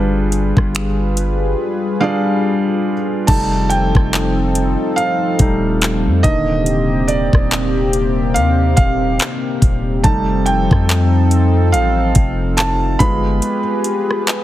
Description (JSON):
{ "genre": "contemporary R&B", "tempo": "71 BPM", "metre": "4/4", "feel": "swing 58% on 16ths", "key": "unclear", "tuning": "A4 = 442 Hz", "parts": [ { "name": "felt-muted upright piano", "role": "accompaniment", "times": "0.0-14.4 s", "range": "D3 to B5", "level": "-18 LUFS", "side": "right 1 dB", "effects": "none" }, { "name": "warm analog pad", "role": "sustained chords", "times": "0.0-14.4 s", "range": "C3 to B4", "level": "-20 LUFS", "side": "left 1 dB", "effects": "chorus, sidechain pumping" }, { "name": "long sustained 808-style bass", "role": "bass", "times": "0.0-13.4 s", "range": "Eb1 to F2", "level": "-17 LUFS", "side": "equal", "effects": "none" }, { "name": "smooth R&B drum kit", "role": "drums", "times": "0.3-14.4 s", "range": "crash cymbal, finger snaps, handclaps, hi-hat, kick drum, rim click", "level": "-16 LUFS", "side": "equal", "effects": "none" } ], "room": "digital ambience", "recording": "heavily compressed radio sound", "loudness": "-13 LUFS", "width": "side -14 dB against mid", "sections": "0.0-3.3 A section; 3.3-14.4 B section", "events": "felt piano solo 3.3-14.4; break 13.4-14.4", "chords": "0.0 G7b9; 3.3 F7; 6.2 Cm9/Eb; 10.0 F7; 13.0 G7b9" }